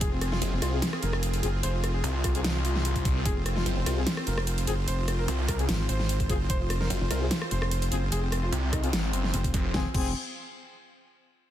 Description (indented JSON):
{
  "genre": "heavy wobble dubstep",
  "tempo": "148 BPM",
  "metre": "4/4",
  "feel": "half-time",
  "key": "F phrygian",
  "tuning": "A4 = 440 Hz",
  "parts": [
    { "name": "warm concert grand piano", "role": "melody", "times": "0.0-10.1 s", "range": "C4 to C5", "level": "-36 LUFS", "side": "left 2 dB", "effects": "digital delay" },
    { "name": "supersaw pad", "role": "sustained chords", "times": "0.0-9.9 s", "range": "C4 to C5", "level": "-38 LUFS", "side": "right 2 dB", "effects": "sidechain pumping" },
    { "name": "wobble bass", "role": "bass", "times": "0.0-10.1 s", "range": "F1 to Ab1", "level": "-28 LUFS", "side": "equal", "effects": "chorus, overdrive" },
    { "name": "dubstep drum kit", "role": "drums", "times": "0.0-10.0 s", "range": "crash cymbal, hi-hat, rim click, snare drum", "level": "-32 LUFS", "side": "equal", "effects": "overdrive" },
    { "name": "electronic kick drum", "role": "drums", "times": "0.0-10.0 s", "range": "none", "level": "-29 LUFS", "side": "equal", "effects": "overdrive" },
    { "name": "snarling distorted saw bass", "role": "bass", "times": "0.4-9.7 s", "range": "F1 to C2", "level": "-28 LUFS", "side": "equal", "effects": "distortion, overdrive" },
    { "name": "dark brass ensemble", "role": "stabs", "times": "0.7-10.1 s", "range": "C4 to Ab4", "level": "-38 LUFS", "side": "left 6 dB", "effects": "digital delay" }
  ],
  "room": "little or no reverb",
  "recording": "dense, heavily limited modern master",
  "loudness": "-25 LUFS",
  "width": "side -12 dB against mid",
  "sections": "0.0-9.7 A section; 9.7-11.4 B section",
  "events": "drop 0.0-9.7",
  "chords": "0.0 Fm"
}